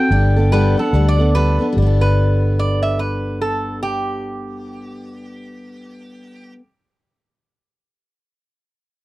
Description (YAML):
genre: honky-tonk and classic country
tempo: 145 BPM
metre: 4/4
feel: swing 60% on 8ths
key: G major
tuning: A4 = 440 Hz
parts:
  - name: pedal steel guitar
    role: melody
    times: 0.0-1.3 s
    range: G5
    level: -24 LUFS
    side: equal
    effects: none
  - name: picked steel-string acoustic guitar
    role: accompaniment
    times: 0.0-6.6 s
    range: G3 to A4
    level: -22 LUFS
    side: left 1 dB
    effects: none
  - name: vintage muted fingered electric bass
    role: bass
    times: 0.1-6.5 s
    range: G1 to D2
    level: -16 LUFS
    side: equal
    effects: none
  - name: lap resonator guitar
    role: second line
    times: 0.5-6.5 s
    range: G4 to E5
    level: -24 LUFS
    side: right 2 dB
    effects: none
room: little or no reverb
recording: dry, close 1970s-style studio recording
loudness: -14 LUFS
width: side -18 dB against mid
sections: 0.0-1.8 A section; 1.8-5.1 B section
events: none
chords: 0.1 Gadd9